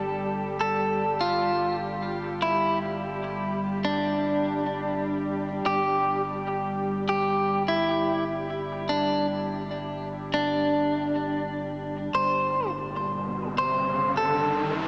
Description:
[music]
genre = trip hop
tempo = 74 BPM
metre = 4/4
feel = swing 54% on 16ths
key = unclear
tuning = A4 = 440 Hz
[part]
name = soft dub sub bass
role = bass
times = 0.0-14.9 s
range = G1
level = -40 LUFS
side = equal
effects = tube saturation
[part]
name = bowed-like drone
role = texture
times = 0.0-14.9 s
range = G3 to G4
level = -35 LUFS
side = equal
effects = built-in reverb
[part]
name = clean electric guitar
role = melody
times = 0.6-14.7 s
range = D4 to C5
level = -28 LUFS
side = equal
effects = dub echo
[part]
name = riser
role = sound effects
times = 12.7-14.9 s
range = none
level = -34 LUFS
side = equal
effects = none
[sound]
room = wet cathedral reverb, RT60 6.7 s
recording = dreamy mix soaked in reverb, small speaker sound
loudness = -27 LUFS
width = mono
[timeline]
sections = 0.0-14.9 A section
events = riser 12.7-14.9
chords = 0.0 G5

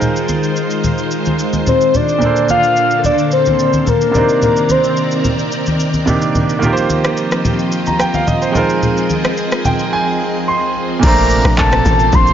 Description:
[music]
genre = amapiano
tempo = 109 BPM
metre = 4/4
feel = straight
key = Bb major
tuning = A4 = 441 Hz
[part]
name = clear concert grand piano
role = accompaniment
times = 0.0-12.3 s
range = Bb2 to C6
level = -18 LUFS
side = right 3 dB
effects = none
[part]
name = string machine, violins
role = sustained chords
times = 0.0-12.3 s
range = Bb2 to Eb5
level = -19 LUFS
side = equal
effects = ensemble chorus
[part]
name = deep house drum kit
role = drums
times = 0.0-12.3 s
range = crash cymbal, handclaps, kick drum, rim click, shaker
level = -21 LUFS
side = equal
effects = overdrive
[part]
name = congas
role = percussion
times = 0.0-9.8 s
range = none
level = -19 LUFS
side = left 1 dB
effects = none
[part]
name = soft octave-layered synth lead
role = melody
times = 1.7-5.3, 11.0-12.3 s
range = Bb4 to C6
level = -14 LUFS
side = left 2 dB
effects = chorus, phaser, tape echo
[part]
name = hollow log drum bass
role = bass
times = 11.0-12.3 s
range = A1 to Bb1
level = -14 LUFS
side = equal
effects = none
[sound]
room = light reverb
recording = nothing above 7.5 kHz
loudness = -12 LUFS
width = side -9 dB against mid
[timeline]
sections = 0.0-11.0 A section; 11.0-12.3 B section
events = grand piano fill 9.4-11.0; drop 11.0-12.3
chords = 0.0 Ab6; 2.2 Bbmaj9; 4.1 Cm9; 6.6 Eb69; 8.6 Ab6; 11.0 Bbmaj9

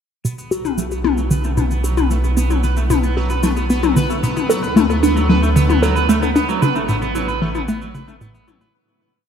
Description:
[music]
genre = ambient, sequencer-driven space music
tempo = 113 BPM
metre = 4/4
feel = straight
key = B minor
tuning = A4 = 443 Hz
[part]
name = hollow square pluck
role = riff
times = 0.2-8.7 s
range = A2 to A4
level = -19 LUFS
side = right 1 dB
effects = chorus, ping-pong delay, shimmer reverb
[part]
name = warm sub bass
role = bass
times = 0.2-8.7 s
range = A1 to D2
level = -20 LUFS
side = equal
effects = none
[part]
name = pulsing gated texture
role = texture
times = 0.8-8.8 s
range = B3 to B4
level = -29 LUFS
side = equal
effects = chorus, built-in reverb, shimmer reverb
[part]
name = electric guitar at the edge of break-up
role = arpeggios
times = 0.3-8.7 s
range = F#3 to B4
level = -24 LUFS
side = moving between left 2 dB and right 6 dB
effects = auto-pan, ping-pong delay, shimmer reverb
[part]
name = electronic cabasa and toms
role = percussion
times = 0.3-8.7 s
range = none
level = -22 LUFS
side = left 7 dB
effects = overdrive, ping-pong delay
[sound]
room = wet cathedral reverb, RT60 6.4 s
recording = in a vast, echoing space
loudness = -15 LUFS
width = side -8 dB against mid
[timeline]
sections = 0.2-8.7 A section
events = fade-in on clean electric guitar 0.2-8.7; fade-in on synth texture 0.2-8.7; filter sweep on synth arpeggio sound 0.2-8.7; fade-out 5.9-8.7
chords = 0.2 B5; 4.5 D6; 6.6 A

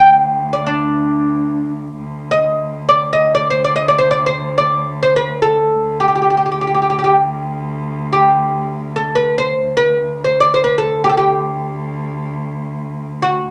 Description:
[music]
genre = Turkish makam ensemble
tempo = free time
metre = none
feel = none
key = D makam hicaz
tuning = A4 = 441 Hz
[part]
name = oud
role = melody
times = 0.0-13.5 s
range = D4 to G5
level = -15 LUFS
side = equal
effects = none
[part]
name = dark cello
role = drone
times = 0.0-13.5 s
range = D2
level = -27 LUFS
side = equal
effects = none
[sound]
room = wet club reverb, RT60 0.8 s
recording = none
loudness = -16 LUFS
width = mono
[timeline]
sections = 0.0-1.9 A section; 1.9-13.5 A section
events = none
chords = none

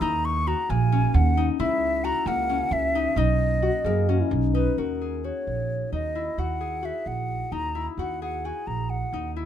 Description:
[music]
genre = contemporary instrumental, chamber music in an uneven meter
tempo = 262 BPM (eighths)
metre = 7/8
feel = straight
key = Eb phrygian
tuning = A4 = 440 Hz
[part]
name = mellow hollow silver concert flute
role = melody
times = 0.0-9.3 s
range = Bb4 to Db6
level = -27 LUFS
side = equal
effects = none
[part]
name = concert harp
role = arpeggios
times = 0.0-9.5 s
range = Bb3 to G#4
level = -29 LUFS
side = left 10 dB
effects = none
[part]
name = upright bass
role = bass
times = 0.0-9.5 s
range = Bb1 to F#2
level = -26 LUFS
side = right 3 dB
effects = none
[part]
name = mellow French horn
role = second line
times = 3.6-4.8 s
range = D#4 to Ab4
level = -29 LUFS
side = left 3 dB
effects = none
[sound]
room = light reverb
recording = close, detailed microphones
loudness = -22 LUFS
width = side -10 dB against mid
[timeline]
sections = 0.0-4.8 A section; 4.8-9.5 B section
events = none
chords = 0.0 Ebm7; 1.6 Gb7/Db; 3.2 Bmaj7; 4.8 Ebm7

